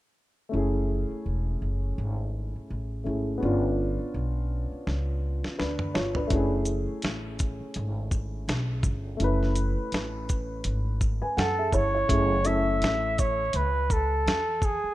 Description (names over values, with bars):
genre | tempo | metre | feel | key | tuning
hip hop, jazz-hop | 83 BPM | 4/4 | swing 58% on 16ths | F# minor | A4 = 440 Hz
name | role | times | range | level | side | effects
dark baby grand piano | accompaniment | 0.5-13.4 s | A3 to G#5 | -30 LUFS | equal | none
upright bass | bass | 0.5-14.9 s | E1 to F#2 | -29 LUFS | equal | none
dusty soul sampler-style drum kit | drums | 4.9-14.8 s | hi-hat, kick drum, shaker, snare drum, toms | -28 LUFS | equal | none
breathy flugelhorn | melody | 11.4-14.9 s | G#4 to E5 | -26 LUFS | right 1 dB | none
room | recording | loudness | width
light reverb | rough home demo mix | -25 LUFS | side -16 dB against mid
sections
0.5-12.1 A section; 12.1-14.9 B section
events
drum fill 4.9-6.3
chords
0.5 F#m9; 3.4 G7#11; 6.3 F#m9; 12.1 F#m7